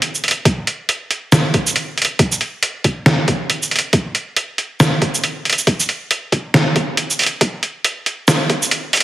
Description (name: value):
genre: dubstep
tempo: 138 BPM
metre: 4/4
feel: swing 59% on 16ths, half-time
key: none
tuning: none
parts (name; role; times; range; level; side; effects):
- trip hop sampler-style drum kit; drums; 0.0-9.0 s; hi-hat, shaker, snare drum; -15 LUFS; right 1 dB; small room ambience
- electronic kick drum; drums; 0.5-8.6 s; none; -18 LUFS; equal; high-pass filter on kick, small room ambience
room: wet echo chamber reverb, RT60 1.3 s, digital ambience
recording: heavily compressed radio sound, high-pass filter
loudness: -15 LUFS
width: side -14 dB against mid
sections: 0.0-9.0 A section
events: build-up 0.0-9.0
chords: none